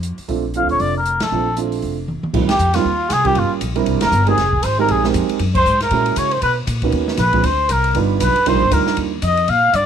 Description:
jazz, small-group swing and bop; 235 BPM; 4/4; swing 59% on 8ths; A4 = 440 Hz
upright bass; bass; 0.0-9.9 s; F1 to Db3; -21 LUFS; left 1 dB
open jazz drum kit; drums; 0.0-9.8 s; crash cymbal, hi-hat, kick drum, ride cymbal, snare drum, toms; -25 LUFS; left 1 dB
dark grand piano; accompaniment; 0.3-9.1 s; G3 to C5; -20 LUFS; right 12 dB
trumpet with cup mute; melody; 0.6-9.9 s; F4 to F5; -18 LUFS; left 3 dB
clear trumpet; second line; 2.5-9.9 s; F4 to F5; -23 LUFS; right 11 dB
little or no reverb; 1960s-style stereo; -15 LUFS; side -8 dB against mid
0.0-2.3 A section; 2.3-9.9 B section
band accent 1.2, 2.5, 4.0, 5.5; drum fill 2.1
0.3 Bbmaj7; 2.3 Eb69; 3.4 Gm7b5; 3.9 C7; 4.4 Fm11; 5.4 Gb7; 6.4 Bmaj7; 7.4 Bbadd9; 8.0 G7b13; 8.5 Cm11

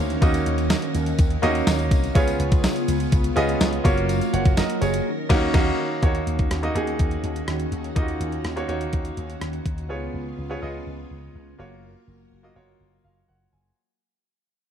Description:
1980s-style pop; 124 BPM; 4/4; straight; Eb minor; A4 = 440 Hz
bright concert grand piano; accompaniment; 0.0-13.8 s; Bb3 to Ab5; -26 LUFS; right 1 dB
string machine, violins; sustained chords; 0.0-13.7 s; Db3 to Bb4; -29 LUFS; equal; ensemble chorus
slap bass with an envelope filter; bass; 0.0-13.7 s; Gb1 to Eb2; -27 LUFS; equal
clean 12-bit digital drum machine; drums; 0.1-9.9 s; crash cymbal, hi-hat, kick drum, rim click, snare drum, tambourine; -22 LUFS; equal
tambourine; percussion; 0.1-5.0 s; -43 LUFS; left 6 dB
light reverb, digital ambience; dark, warm production; -20 LUFS; side -9 dB against mid
0.0-6.0 A section; 6.0-13.8 B section
band accent 5.1-6.0; fade-out 6.0-13.8; grand piano fill 12.8-13.8
0.0 Ebm7; 2.2 Db7; 3.8 Gbmaj7; 5.1 Ebm7; 9.9 Db7; 11.6 Gbmaj7

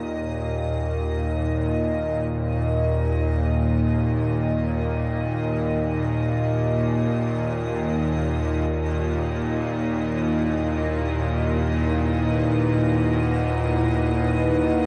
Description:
dark ambient drone; free time; Eb phrygian; A4 = 440 Hz
dark analog pad; sustained chords; 0.0-14.9 s; Eb4 to Gb5; -30 LUFS; equal; subtle chorus
bowed-like drone; drone; 0.0-14.9 s; Eb2 to Bb2; -25 LUFS; equal; built-in reverb
icy glass pad; texture; 0.0-14.9 s; Eb5; -36 LUFS; equal; chorus, built-in reverb
wet huge ambient reverb, RT60 8.4 s; worn, warbling old tape, cassette tape, warbly pitch drift; -23 LUFS; mono
0.0-14.9 A section
fade-in on analog synth pad 0.0-14.9; fade-in on ambient pad 0.0-14.9
0.0 Eb5; 8.9 E5/Eb

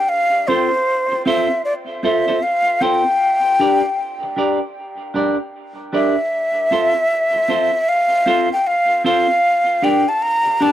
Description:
reggae; 77 BPM; 4/4; swing 63% on 16ths; F major; A4 = 440 Hz
breathy mellow silver concert flute; melody; 0.0-10.7 s; C5 to Bb5; -16 LUFS; equal; dub echo
clean electric guitar; accompaniment; 0.5-10.7 s; C4 to D5; -21 LUFS; right 1 dB; phaser, dub echo
light reverb, studio ambience; dry, close 1970s-style studio recording; -15 LUFS; side -12 dB against mid
0.0-10.7 A section
0.1 F; 3.2 Gm; 6.3 F; 9.4 Gm

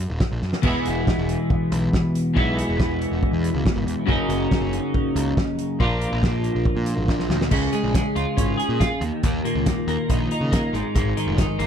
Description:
indie rock; 140 BPM; 4/4; straight; A4 = 440 Hz
fuzz picked electric bass; bass; 0.0-11.7 s; Eb1 to Db3; -26 LUFS; equal; overdrive
loose indie drum kit; drums; 0.2-11.7 s; crash cymbal, hi-hat, kick drum, snare drum; -23 LUFS; equal
twelve-string electric guitar; riff; 0.6-11.7 s; Eb2 to Ab4; -22 LUFS; equal; double-tracked left and right
little or no reverb; -20 LUFS; side -8 dB against mid
0.0-7.5 A section; 7.5-11.7 B section
drum fill 0.4, 7.1-7.5
0.0 Gb6; 0.6 E; 4.1 Gb6; 5.8 Bb; 7.5 Db; 9.0 Eb5; 10.7 Ab5

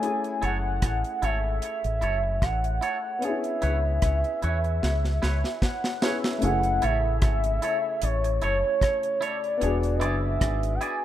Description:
lovers rock reggae; 75 BPM; 4/4; swing 55% on 16ths; F# minor; A4 = 440 Hz
warm velvety synth lead; melody; 0.0-11.0 s; C#5 to G#5; -28 LUFS; equal; chorus, tape echo
warm baby grand piano; accompaniment; 0.0-11.0 s; C#3 to G#4; -32 LUFS; left 4 dB; tape echo
deep reggae drum kit; drums; 0.0-11.0 s; hi-hat, kick drum, rim click, snare drum; -27 LUFS; equal
twangy electric guitar; stabs; 0.4-11.0 s; E4 to D5; -34 LUFS; right 3 dB; spring reverb, tape echo
deep dub fingered electric bass; bass; 0.4-10.8 s; E1 to E2; -26 LUFS; equal
light reverb, studio reverb; rough home demo mix; -23 LUFS; side -12 dB against mid
0.0-6.4 A section; 6.4-11.0 B section
drum fill 4.8-6.4
0.0 F#m7; 3.2 C#m7; 6.4 F#m7; 9.6 E7

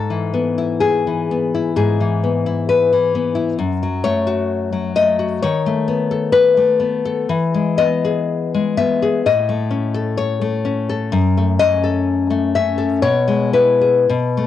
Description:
romantic piece for solo classical guitar; 53-67 BPM; 4/4; rubato; E major; A4 = 440 Hz
nylon-string guitar; solo; 0.0-14.5 s; F#2 to E5; -15 LUFS; left 4 dB; cassette tape
light reverb, small room reverb; home recording on cassette; -15 LUFS; side -11 dB against mid
0.0-14.5 A section
0.0 E/G#; 3.6 F#m; 5.4 B7/D#; 7.3 E; 9.2 A; 11.1 F#m; 13.0 E/B

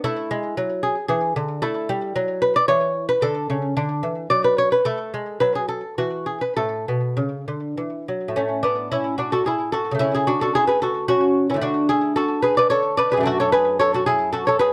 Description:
classical, baroque-style dance for lute; 110 BPM; 3/4; rubato; A major; A4 = 440 Hz
lute; solo; 0.0-14.7 s; F#2 to D5; -21 LUFS; equal; slapback echo
light reverb; close, detailed microphones; -21 LUFS; mono
0.0-8.4 A section; 8.4-14.7 B section
0.0 A5; 3.2 D; 4.9 N.C.; 6.6 A; 10.0 A/C#; 11.6 D

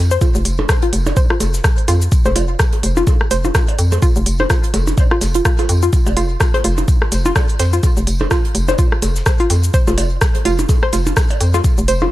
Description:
minimal techno; 126 BPM; 4/4; swing 57% on 16ths; A4 = 440 Hz
hollow knocking FM bass; bass; 0.0-12.1 s; F1 to F2; -16 LUFS; equal; sidechain pumping
hollow square pluck; riff; 0.1-12.0 s; F4 to C5; -21 LUFS; equal; chorus, sidechain pumping, dub echo
minimal click drum kit; drums; 0.1-12.0 s; cabasa, hi-hat, rim click; -22 LUFS; left 1 dB
damped 70s drum kit; drums; 0.2-12.0 s; hi-hat, snare drum, tambourine; -34 LUFS; right 2 dB; sidechain pumping on hats, high-pass filter on hats, high-pass filter on snare, sidechain pumping on perc, high-pass filter on perc, high-pass filter on room, tape echo
electronic kick drum; drums; 0.2-11.8 s; -15 LUFS; equal
percussion blips; percussion; 0.2-12.1 s; -24 LUFS; right 2 dB; analog delay
small room ambience; echo-heavy mix; -13 LUFS; side -16 dB against mid
0.0-12.1 A section
0.0 F5

